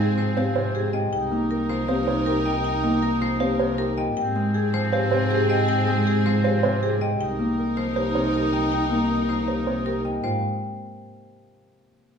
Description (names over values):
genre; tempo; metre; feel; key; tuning
classical, minimalist pattern music; 158 BPM; 4/4; straight; Ab major; A4 = 440 Hz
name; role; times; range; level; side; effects
marimba with hard mallets; melody; 0.0-10.4 s; G4 to G5; -29 LUFS; left 5 dB; none
warm oboe; second line; 0.0-10.0 s; C4 to Eb4; -31 LUFS; right 2 dB; none
Celtic harp; accompaniment; 0.0-10.4 s; C3 to C4; -26 LUFS; left 1 dB; none
rich studio violin section; sustained chords; 0.0-10.0 s; C4 to Bb4; -29 LUFS; left 4 dB; none
warm concert grand piano; arpeggios; 0.0-10.4 s; Eb4 to C5; -29 LUFS; right 7 dB; none
xylophone with soft rubber mallets; arpeggios; 0.0-10.4 s; F5 to G5; -33 LUFS; left 1 dB; none
rich double bass; bass; 0.0-10.4 s; C2 to Ab2; -27 LUFS; right 2 dB; none
room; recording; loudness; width
moderate recital hall reverb, RT60 1.4 s; studio reverb; -20 LUFS; side -7 dB against mid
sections
0.0-10.2 A section; 10.2-11.8 B section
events
none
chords
0.0 Abmaj7; 1.1 Cm7; 4.2 Abmaj7; 7.2 Cm7; 10.2 Abmaj7(no3)